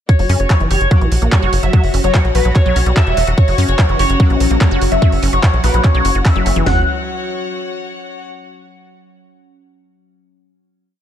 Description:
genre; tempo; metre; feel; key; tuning
psychedelic trance; 146 BPM; 4/4; straight; F# major; A4 = 439 Hz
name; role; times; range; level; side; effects
overdriven synth lead; melody; 0.1-6.8 s; B4 to F#5; -20 LUFS; left 1 dB; phaser, sidechain pumping, ping-pong delay
drum and bass drum kit; drums; 0.1-6.8 s; kick drum, snare drum, toms; -11 LUFS; equal; overdrive
drum and bass drum kit; drums; 0.1-6.6 s; handclaps, hi-hat; -24 LUFS; right 1 dB; overdrive
rich chamber string section; texture; 0.1-8.3 s; F#4 to F#5; -26 LUFS; left 4 dB; sidechain pumping
wide unison pluck; riff; 0.2-6.9 s; E3 to G4; -22 LUFS; moving between left 4 dB and right 6 dB; auto-pan, sidechain pumping, ping-pong delay
tight sequencer bass; bass; 0.2-6.9 s; E1 to F#2; -15 LUFS; equal; tube saturation
metallic wobble bass; second line; 0.9-5.9 s; F#3 to A#3; -34 LUFS; right 2 dB; none
evolving wavetable pad; sustained chords; 3.9-6.7 s; F#3 to C#4; -24 LUFS; left 2 dB; chorus, built-in reverb, phaser, sidechain pumping
room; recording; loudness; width
digital ambience; dark, warm production; -11 LUFS; side -10 dB against mid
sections
0.1-6.7 groove; 6.7-8.3 final chord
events
none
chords
0.1 F#5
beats
| 0.09 0.50 0.91 1.32 | 1.73 2.14 2.56 2.97 | 3.38 3.79 4.20 4.61 | 5.02 5.43 5.84 6.25 | 6.67 7.08 7.49 7.90

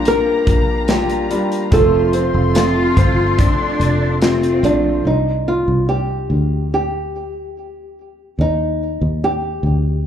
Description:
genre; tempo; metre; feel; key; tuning
pop ballad; 72 BPM; 4/4; straight; unclear; A4 = 440 Hz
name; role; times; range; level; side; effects
nylon-string guitar; melody; 0.0-10.1 s; D4 to Bb4; -19 LUFS; right 1 dB; slapback echo, digital delay
clear grand piano; accompaniment; 0.0-5.1 s; F3 to F4; -24 LUFS; right 1 dB; slapback echo
dark chamber string section; sustained chords; 0.0-5.0 s; G4 to C6; -25 LUFS; left 5 dB; none
fingerpicked steel-string acoustic guitar; arpeggios; 0.0-5.1 s; F2 to F4; -20 LUFS; left 3 dB; slapback echo, digital delay
fingered electric bass; bass; 0.0-10.1 s; F1 to Eb2; -19 LUFS; equal; none
modern studio drum kit; drums; 0.1-4.8 s; hi-hat, kick drum, snare drum; -18 LUFS; equal; none
tambourine; percussion; 0.9-4.4 s; none; -36 LUFS; right 4 dB; none
bright symphonic cello section; second line; 2.5-5.0 s; C4 to F4; -22 LUFS; left 1 dB; slapback echo
room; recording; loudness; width
light reverb, studio ambience; live gig heard through the venue's PA, club ambience; -14 LUFS; side -9 dB against mid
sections
0.0-5.1 A section; 5.1-10.1 B section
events
none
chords
0.0 Gm7; 1.7 F; 5.1 C5; 8.4 Eb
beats
0.06 0.89 | 1.72 2.56 3.39 4.22 | 5.06 5.89 6.72 7.56 | 8.39 9.22 10.06

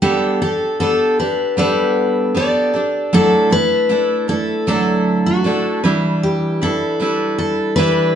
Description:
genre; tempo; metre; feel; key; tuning
pop; 77 BPM; 4/4; straight; G major; A4 = 439 Hz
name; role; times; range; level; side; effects
picked steel-string acoustic guitar; melody; 0.0-8.2 s; F#4 to D5; -18 LUFS; left 2 dB; none
picked steel-string acoustic guitar; accompaniment; 0.0-8.2 s; D3 to B4; -17 LUFS; right 2 dB; none
room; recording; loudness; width
wet large studio reverb, RT60 0.9 s; band playing live in one room, nothing above 10.5 kHz; -14 LUFS; side -8 dB against mid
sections
0.0-8.2 A section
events
none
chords
0.0 Gadd9; 3.1 Dadd9; 5.8 Em7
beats
| 0.02 0.79 1.57 2.35 | 3.12 3.90 4.67 5.45 | 6.22 7.00 7.77

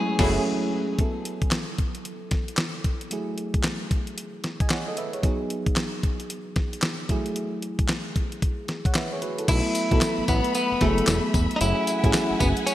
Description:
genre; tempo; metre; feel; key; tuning
R&B, new jack swing; 113 BPM; 4/4; swing 62% on 16ths; unclear; A4 = 439 Hz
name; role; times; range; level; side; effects
direct-recorded clean electric guitar; melody; 0.0-0.4, 9.5-12.7 s; A3 to G#4; -26 LUFS; left 1 dB; lush chorus, digital delay
FM electric piano; accompaniment; 0.0-12.7 s; F#3 to G#5; -29 LUFS; right 1 dB; chorus
warm studio string section; sustained chords; 0.0-1.0, 9.5-12.7 s; F#3 to B5; -32 LUFS; left 3 dB; none
fat analog bass; bass; 0.2-0.4, 9.5-12.5 s; E1 to B1; -25 LUFS; equal; none
clean 12-bit digital drum machine; drums; 0.2-12.7 s; crash cymbal, handclaps, hi-hat, kick drum, snare drum, tambourine; -25 LUFS; equal; none
room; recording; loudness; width
moderate lush hall reverb, RT60 2.5 s; bright 1980s-style digital production; -22 LUFS; side -14 dB against mid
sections
1.0-9.5 A section; 9.5-12.7 B section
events
band accent 0.0-1.0; break 0.5-1.0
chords
0.0 F#m9; 1.0 B7sus4; 3.1 F#m9; 5.2 G#m7; 7.1 F#m9; 9.5 B7sus4; 11.6 F#m9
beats
0.46 | 0.99 1.52 2.05 2.58 | 3.11 3.64 4.17 4.70 | 5.23 5.76 6.30 6.83 | 7.36 7.89 8.42 8.95 | 9.48 10.01 10.54 11.07 | 11.61 12.14 12.67

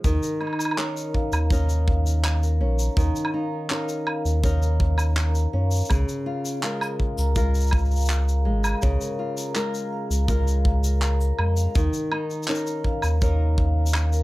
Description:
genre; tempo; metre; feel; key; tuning
folktronica; 82 BPM; 4/4; straight; unclear; A4 = 439 Hz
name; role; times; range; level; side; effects
flamenco guitar; arpeggios; 0.0-14.2 s; Db3 to Bb4; -29 LUFS; equal; digital delay
warm sub bass; bass; 0.0-14.2 s; Ab1 to Gb2; -21 LUFS; equal; none
kick drum; drums; 0.0-13.7 s; none; -25 LUFS; equal; none
shaker, woodblock and handclaps; drums; 0.0-14.2 s; none; -30 LUFS; equal; none
vibraphone with medium mallets; second line; 0.2-14.2 s; Bb4 to Bb5; -32 LUFS; left 2 dB; digital delay
room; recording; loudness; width
little or no reverb; none; -21 LUFS; side -18 dB against mid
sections
0.0-14.2 A section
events
none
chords
0.0 Eb7(no3); 5.9 Bbm7; 11.8 Eb7(no3)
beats
| 0.05 0.78 1.51 2.24 | 2.97 3.71 4.44 5.17 | 5.90 6.63 7.36 8.10 | 8.83 9.56 10.29 11.02 | 11.75 12.48 13.22 13.95

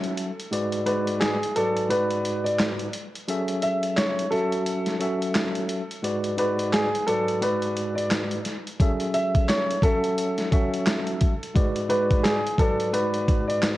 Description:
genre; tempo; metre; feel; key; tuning
hip hop, boom-bap hip-hop; 87 BPM; 4/4; swing 58% on 16ths; unclear; A4 = 444 Hz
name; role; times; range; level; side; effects
warm upright piano; melody; 0.0-13.6 s; G#4 to E5; -26 LUFS; equal; high-pass filter, low-pass filter, cassette tape
tine electric piano; accompaniment; 0.0-13.8 s; G#2 to E5; -26 LUFS; equal; medium stereo tremolo, high-pass filter, low-pass filter, cassette tape
dusty soul sampler-style drum kit; drums; 0.0-13.8 s; handclaps, hi-hat, kick drum, snare drum; -26 LUFS; equal; cassette tape
room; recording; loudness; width
light reverb, digital ambience; home recording on cassette; -22 LUFS; side -16 dB against mid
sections
0.0-13.8 A section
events
break 0.0-8.8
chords
0.0 F#m7; 0.5 G#m7b5; 3.3 F#m9; 6.0 G#m7b5; 8.8 F#m9; 11.6 G#m7b5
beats
| 0.52 1.21 1.90 2.59 | 3.28 3.97 4.66 5.35 | 6.04 6.73 7.42 8.11 | 8.80 9.49 10.18 10.87 | 11.56 12.24 12.94 13.62

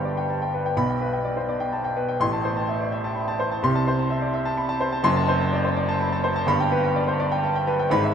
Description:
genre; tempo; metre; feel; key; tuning
classical, virtuoso piano study; 126 BPM; 3/4; rubato; G major; A4 = 440 Hz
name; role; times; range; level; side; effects
warm baby grand piano; solo; 0.0-8.1 s; F#1 to C6; -21 LUFS; equal; none
room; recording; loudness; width
wet huge ambient reverb, RT60 8.3 s; in a vast, echoing space; -21 LUFS; side -8 dB against mid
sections
0.0-8.1 A section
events
none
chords
0.0 G; 0.8 G/B; 2.2 Am; 3.6 Am/C; 5.0 D7/F#; 6.5 G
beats
0.29 | 0.77 1.25 1.72 | 2.20 2.68 3.15 | 3.62 4.09 4.56 | 5.04 5.52 5.99 | 6.47 6.95 7.43 | 7.91

